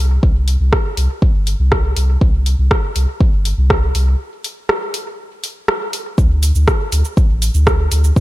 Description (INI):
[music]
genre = dub techno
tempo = 121 BPM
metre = 4/4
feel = straight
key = unclear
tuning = A4 = 441 Hz
[part]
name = warm sub bass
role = bass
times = 0.0-8.2 s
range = G1 to D2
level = -14 LUFS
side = equal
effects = sidechain pumping
[part]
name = electronic kick drum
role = drums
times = 0.2-8.2 s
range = none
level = -14 LUFS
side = equal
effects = studio reverb
[part]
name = deep house drum kit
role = drums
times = 0.5-8.2 s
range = cabasa, hi-hat, rim click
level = -20 LUFS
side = right 1 dB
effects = studio reverb
[sound]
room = little or no reverb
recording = none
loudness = -13 LUFS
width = side -17 dB against mid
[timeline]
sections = 0.0-6.2 A section; 6.2-8.2 A section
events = break 4.2-6.2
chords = none